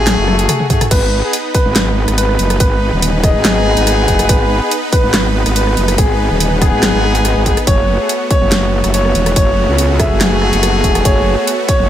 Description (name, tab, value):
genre	heavy wobble dubstep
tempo	142 BPM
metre	4/4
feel	half-time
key	G# phrygian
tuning	A4 = 440 Hz
part	supersaw chords	sustained chords	0.0-11.9 s	A3 to B4	-20 LUFS	right 1 dB	sidechain pumping
part	bright brass ensemble	stabs	0.0-11.5 s	A3 to G#4	-18 LUFS	left 3 dB	ping-pong delay
part	metallic wobble bass	bass	0.0-11.9 s	D#1 to C#2	-15 LUFS	equal	chorus, overdrive
part	dubstep drum kit	drums	0.1-11.8 s	crash cymbal, handclaps, hi-hat, rim click, snare drum, toms	-17 LUFS	equal	none
part	electronic kick drum	drums	0.7-11.8 s	none	-15 LUFS	equal	none
part	clear concert grand piano	melody	0.9-11.9 s	G#4 to E5	-18 LUFS	right 1 dB	ping-pong delay
room	light reverb, digital ambience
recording	none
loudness	-11 LUFS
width	side -11 dB against mid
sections	0.0-11.9 A section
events	drum fill 0.3-0.9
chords	0.0 F#madd9; 0.9 G#m; 7.7 F#madd9